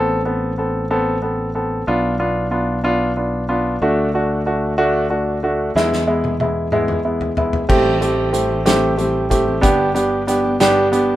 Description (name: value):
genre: six-eight pop ballad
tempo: 62 BPM (dotted quarters)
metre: 6/8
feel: straight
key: A minor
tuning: A4 = 440 Hz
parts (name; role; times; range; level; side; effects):
- clear concert grand piano; accompaniment; 0.0-11.2 s; G#3 to A4; -17 LUFS; right 1 dB; plate reverb
- fingered electric bass; bass; 0.0-11.2 s; G1 to E2; -25 LUFS; equal; none
- loose indie drum kit; drums; 5.8-11.1 s; crash cymbal, hi-hat, kick drum, snare drum, toms; -22 LUFS; equal; none
- fingerpicked steel-string acoustic guitar; arpeggios; 7.7-11.2 s; G2 to G4; -24 LUFS; left 2 dB; plate reverb
room: light reverb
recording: rough home demo mix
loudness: -15 LUFS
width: side -14 dB against mid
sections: 0.0-7.7 A section; 7.7-11.2 B section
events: drum fill 5.8-7.7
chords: 0.0 Amadd9; 1.9 Bdim; 3.8 D; 5.8 E; 7.7 Am7; 9.6 G